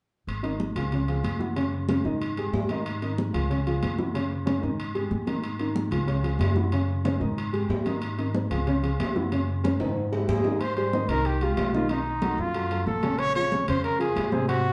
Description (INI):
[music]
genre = Afro-Cuban jazz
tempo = 186 BPM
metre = 4/4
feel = straight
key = Ab major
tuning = A4 = 439 Hz
[part]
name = upright bass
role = bass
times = 0.3-14.7 s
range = Ab1 to Ab2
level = -32 LUFS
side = equal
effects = none
[part]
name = congas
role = percussion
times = 0.3-14.7 s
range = none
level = -34 LUFS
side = equal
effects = none
[part]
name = timbales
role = percussion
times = 0.3-14.6 s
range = none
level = -37 LUFS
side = equal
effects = none
[part]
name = warm baby grand piano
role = accompaniment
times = 0.4-14.7 s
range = C3 to Eb5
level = -31 LUFS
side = equal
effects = none
[part]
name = warm trumpet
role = melody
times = 10.3-14.7 s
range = D#4 to Db5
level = -30 LUFS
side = equal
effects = plate reverb
[sound]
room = wet club reverb, RT60 0.8 s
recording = heard from further back in the room, nothing above 11.0 kHz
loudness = -26 LUFS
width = mono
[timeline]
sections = 0.3-10.6 A section; 10.6-14.7 B section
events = drum fill 9.8-10.6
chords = 0.3 Ab5; 0.9 Db; 1.6 Gb5; 2.2 Ab5; 3.5 Db; 4.1 Gb5; 4.8 Ab5; 6.1 Db; 6.7 Gb5; 7.4 Ab5; 8.7 Db; 9.3 Gb5; 10.0 Ab5; 10.6 Abmaj7; 11.9 B7#11; 13.2 Bbm9